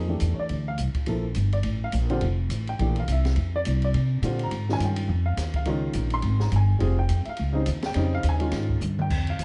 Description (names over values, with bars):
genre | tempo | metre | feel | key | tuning
modal jazz | 209 BPM | 4/4 | swing 59% on 8ths | unclear | A4 = 440 Hz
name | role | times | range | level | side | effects
warm baby grand piano | accompaniment | 0.0-9.4 s | Db3 to C6 | -32 LUFS | equal | none
upright bass | bass | 0.0-9.4 s | F1 to C3 | -26 LUFS | equal | none
open jazz drum kit | drums | 0.2-9.4 s | crash cymbal, hi-hat, kick drum, ride cymbal, snare drum, toms | -36 LUFS | equal | none
room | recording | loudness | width
light reverb | dark, warm production, nothing above 10.6 kHz | -25 LUFS | mono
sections
0.0-9.4 A section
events
drum fill 8.8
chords
0.0 Bbmaj9; 4.5 Dbmaj9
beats
0.21 0.50 0.79 | 1.07 1.36 1.65 1.94 | 2.22 2.51 2.80 3.08 | 3.37 3.66 3.94 4.23 | 4.52 4.80 5.09 5.38 | 5.67 5.95 6.24 6.53 | 6.81 7.10 7.38 7.67 | 7.96 8.24 8.53 8.82 | 9.10 9.39